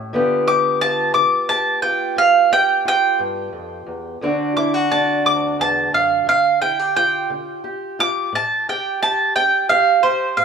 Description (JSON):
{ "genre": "acoustic country blues, solo or duo", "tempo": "58 BPM (dotted quarters)", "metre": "12/8", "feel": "straight", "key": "unclear", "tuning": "A4 = 439 Hz", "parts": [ { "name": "fingerpicked steel-string acoustic guitar", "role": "accompaniment", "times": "0.0-10.4 s", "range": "D2 to G4", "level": "-22 LUFS", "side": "left 1 dB", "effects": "none" }, { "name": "mandolin", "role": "melody", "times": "0.5-10.4 s", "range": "C5 to D6", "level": "-16 LUFS", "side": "right 2 dB", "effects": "none" } ], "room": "light reverb, small room ambience", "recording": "rough home demo mix", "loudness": "-15 LUFS", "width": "side -6 dB against mid", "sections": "0.0-10.4 A section", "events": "mandolin solo 0.0-10.4", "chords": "0.1 G7; 4.2 D7; 6.3 G5; 8.3 A7" }